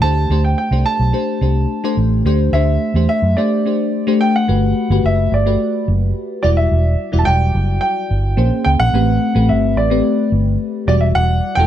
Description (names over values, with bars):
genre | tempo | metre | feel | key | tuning
polished 1980s jazz-funk pop | 108 BPM | 4/4 | straight | G major | A4 = 438 Hz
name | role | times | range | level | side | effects
warm grand piano | melody | 0.0-11.7 s | D5 to A5 | -20 LUFS | right 2 dB | slapback echo
bell-like FM electric piano | accompaniment | 0.0-11.7 s | F#3 to D5 | -18 LUFS | left 2 dB | phaser, wide subtle chorus
vintage muted fingered electric bass | bass | 0.0-11.7 s | E1 to F#2 | -15 LUFS | equal | none
room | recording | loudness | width
studio ambience | dry, close 1970s-style studio recording | -13 LUFS | side -11 dB against mid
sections
0.0-4.5 A section; 4.5-11.7 B section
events
none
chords
0.0 D7sus4; 4.5 Gmaj9; 6.4 Em9; 8.4 Bbm9; 8.9 Am9; 10.9 Em9